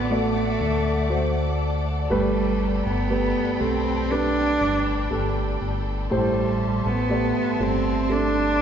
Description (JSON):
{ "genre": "pop ballad", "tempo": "60 BPM", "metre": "4/4", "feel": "straight", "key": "G major", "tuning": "A4 = 440 Hz", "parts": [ { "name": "rich cello", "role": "melody", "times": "0.0-8.6 s", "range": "G3 to D4", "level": "-25 LUFS", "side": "right 1 dB", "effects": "none" }, { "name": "dark concert grand piano", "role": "accompaniment", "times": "0.0-8.6 s", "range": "G2 to D5", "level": "-26 LUFS", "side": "right 2 dB", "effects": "none" }, { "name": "warm studio string section", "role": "sustained chords", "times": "0.0-8.6 s", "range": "A4 to D6", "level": "-31 LUFS", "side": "left 2 dB", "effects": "none" }, { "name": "fingered electric bass", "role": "bass", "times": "0.0-8.6 s", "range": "G1 to D2", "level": "-26 LUFS", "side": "equal", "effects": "none" } ], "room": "wet church reverb, RT60 3.7 s", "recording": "recorded in a church or concert hall, nothing above 7.5 kHz", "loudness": "-20 LUFS", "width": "side -8 dB against mid", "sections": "0.0-8.6 A section", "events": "none", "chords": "0.0 D; 2.1 Gadd9; 6.1 Am7", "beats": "0.11 1.11 | 2.11 3.11 4.11 5.11 | 6.11 7.11 8.11" }